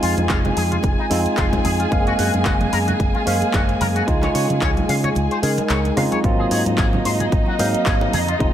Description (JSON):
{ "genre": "nu-disco, nu disco", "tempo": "111 BPM", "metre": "4/4", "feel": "swing 56% on 16ths", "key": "Ab mixolydian", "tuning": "A4 = 440 Hz", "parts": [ { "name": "bright tine electric piano", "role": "accompaniment", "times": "0.0-8.5 s", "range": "Gb3 to F5", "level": "-22 LUFS", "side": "right 1 dB", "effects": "sidechain pumping, analog delay" }, { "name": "dark chamber string section", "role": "sustained chords", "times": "0.0-8.5 s", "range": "Eb4 to Ab5", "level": "-25 LUFS", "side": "equal", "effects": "sidechain pumping" }, { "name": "electric guitar with an envelope filter", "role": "riff", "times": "0.0-8.3 s", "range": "C4 to F5", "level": "-27 LUFS", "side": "left 4 dB", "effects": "lush chorus, analog delay" }, { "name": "picked electric bass with an envelope filter", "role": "bass", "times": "0.0-8.5 s", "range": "F1 to Db3", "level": "-23 LUFS", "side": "equal", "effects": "sidechain pumping" }, { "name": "house drum kit", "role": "drums", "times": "0.0-8.5 s", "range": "handclaps, hi-hat, rim click", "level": "-28 LUFS", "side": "right 1 dB", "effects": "overdrive" }, { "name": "congas", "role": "percussion", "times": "0.2-8.3 s", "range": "none", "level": "-29 LUFS", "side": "right 2 dB", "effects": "none" }, { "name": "electronic kick drum", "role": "drums", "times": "0.3-8.5 s", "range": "none", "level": "-21 LUFS", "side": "equal", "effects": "overdrive" } ], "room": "moderate plate reverb, RT60 2.2 s", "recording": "dreamy mix soaked in reverb", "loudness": "-16 LUFS", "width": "side -10 dB against mid", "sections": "0.0-6.2 A section; 6.2-8.5 B section", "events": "kick drops out 5.2-6.2; drop 6.2-8.5", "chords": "0.0 Fm7; 1.9 Gbmaj9#11; 4.1 Dbmaj7; 6.2 Ab13" }